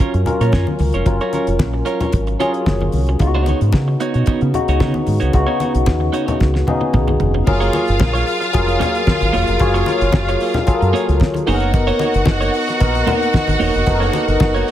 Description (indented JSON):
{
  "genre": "disco",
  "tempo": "112 BPM",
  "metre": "4/4",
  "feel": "straight",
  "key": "F# major",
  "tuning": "A4 = 439 Hz",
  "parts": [
    { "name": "barky tine electric piano", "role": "accompaniment", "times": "0.0-14.7 s", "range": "C#3 to C#5", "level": "-20 LUFS", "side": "left 2 dB", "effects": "overdrive, analog chorus" },
    { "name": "clean electric guitar", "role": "accompaniment", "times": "0.0-14.7 s", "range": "A#3 to C#5", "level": "-24 LUFS", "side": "right 6 dB", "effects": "phaser" },
    { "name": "mellow French horn section", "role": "sustained chords", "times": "0.0-14.7 s", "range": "C#3 to A#4", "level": "-25 LUFS", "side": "left 1 dB", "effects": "none" },
    { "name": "deep dub fingered electric bass", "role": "bass", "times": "0.0-14.6 s", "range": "E1 to C#3", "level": "-18 LUFS", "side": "equal", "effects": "none" },
    { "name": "damped 70s drum kit", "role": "drums", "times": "0.0-14.7 s", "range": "crash cymbal, hi-hat, kick drum, snare drum, toms", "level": "-18 LUFS", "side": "equal", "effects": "none" },
    { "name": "congas", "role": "percussion", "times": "0.3-14.5 s", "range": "none", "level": "-25 LUFS", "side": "left 3 dB", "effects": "none" },
    { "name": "clear studio string section", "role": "second line", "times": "7.5-14.7 s", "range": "E#4 to F#5", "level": "-21 LUFS", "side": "equal", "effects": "none" }
  ],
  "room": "studio reverb",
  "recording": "none",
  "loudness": "-14 LUFS",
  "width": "side -12 dB against mid",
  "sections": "0.0-7.5 A section; 7.5-14.7 B section",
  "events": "drum fill 6.4-7.5",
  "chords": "0.0 F#maj7; 3.2 C#9sus4; 7.5 F#maj9; 11.5 Bmaj9",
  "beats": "0.00 0.53 | 1.07 1.60 2.14 2.67 | 3.20 3.74 4.27 4.81 | 5.34 5.87 6.41 6.94 | 7.47 8.01 8.54 9.07 | 9.61 10.14 10.67 11.21 | 11.74 12.27 12.81 13.34 | 13.87 14.41"
}